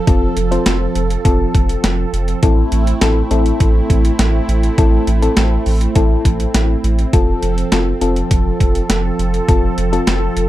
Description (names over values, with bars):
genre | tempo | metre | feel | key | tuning
synth-pop | 102 BPM | 4/4 | straight | unclear | A4 = 441 Hz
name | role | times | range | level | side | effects
brassy analog pad | sustained chords | 0.0-10.5 s | F3 to A4 | -21 LUFS | right 4 dB | chorus
mellow FM electric piano | accompaniment | 0.1-10.4 s | C4 to C5 | -20 LUFS | left 5 dB | chorus
round analog bass | bass | 0.1-10.5 s | F1 to A1 | -17 LUFS | equal | none
boom bap sampler-style drum kit | drums | 0.1-10.5 s | hi-hat, kick drum, snare drum | -16 LUFS | equal | overdrive
room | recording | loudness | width
light reverb | dark, warm production | -12 LUFS | side -14 dB against mid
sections
0.0-10.5 A section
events
none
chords
0.0 F; 2.4 Am; 7.1 F